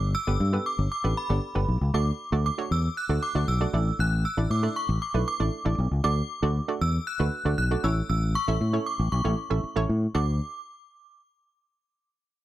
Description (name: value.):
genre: dance-pop.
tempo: 117 BPM.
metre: 4/4.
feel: straight.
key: D major.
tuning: A4 = 440 Hz.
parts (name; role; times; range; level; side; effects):
synth chime; melody; 0.0-10.4 s; B5 to F#6; -31 LUFS; equal; ensemble chorus, tremolo, slapback echo.
hollow square pluck; accompaniment; 0.0-10.4 s; A3 to E5; -31 LUFS; right 4 dB; chorus.
fingered electric bass; bass; 0.0-10.4 s; G1 to A2; -24 LUFS; left 1 dB; none.
room: little or no reverb.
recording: dry, close 1970s-style studio recording.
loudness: -24 LUFS.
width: side -14 dB against mid.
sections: 0.0-10.1 A section; 10.1-12.2 B section.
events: none.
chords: 0.0 Gadd9; 1.9 D; 3.7 Asus4; 6.0 D; 7.8 A; 10.1 D.